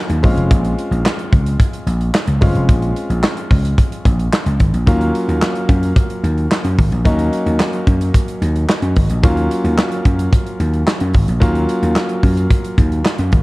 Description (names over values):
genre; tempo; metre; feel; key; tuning
early-eighties boogie funk; 110 BPM; 4/4; straight; Eb dorian; A4 = 440 Hz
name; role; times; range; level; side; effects
clear baby grand piano; accompaniment; 0.0-13.4 s; Gb3 to F4; -21 LUFS; equal; none
vintage slap bass; bass; 0.1-13.4 s; F1 to Gb2; -16 LUFS; equal; none
modern studio drum kit; drums; 0.1-13.4 s; handclaps, hi-hat, kick drum, snare drum; -15 LUFS; equal; none
room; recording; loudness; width
light reverb, small room ambience; dark, warm production; -13 LUFS; side -21 dB against mid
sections
0.0-13.4 A section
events
none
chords
0.2 Bbm9; 4.9 Ebm9